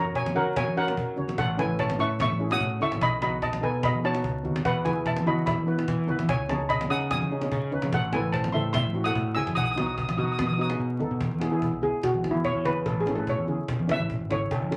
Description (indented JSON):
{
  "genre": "calypso",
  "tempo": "146 BPM",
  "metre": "4/4",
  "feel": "straight",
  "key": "E major",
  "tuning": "A4 = 440 Hz",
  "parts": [
    { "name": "steel pan", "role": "melody", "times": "0.0-14.8 s", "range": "E4 to E6", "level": "-30 LUFS", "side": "equal", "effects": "none" },
    { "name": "steel pan", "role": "accompaniment", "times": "0.0-14.8 s", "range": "B3 to C#5", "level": "-34 LUFS", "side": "equal", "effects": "none" },
    { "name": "growling fingered electric bass", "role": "bass", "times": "0.0-14.8 s", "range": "F#1 to F#3", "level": "-33 LUFS", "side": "equal", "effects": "overdrive" },
    { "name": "cajon", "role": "drums", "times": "0.1-14.8 s", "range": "none", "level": "-35 LUFS", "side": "equal", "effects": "none" },
    { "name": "congas", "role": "percussion", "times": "0.3-14.7 s", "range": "none", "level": "-36 LUFS", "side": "equal", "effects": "none" }
  ],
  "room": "wet small room reverb, RT60 0.5 s",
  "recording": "vinyl crackle",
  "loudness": "-26 LUFS",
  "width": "mono",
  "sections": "0.0-11.2 A section; 11.2-14.8 B section",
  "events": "break 10.8-11.2; steel pan solo 11.2-14.8",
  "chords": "0.0 F#; 1.4 A; 3.0 B; 4.7 E; 6.3 C#sus2; 7.9 Am; 9.6 B; 11.2 E; 12.9 Aadd9"
}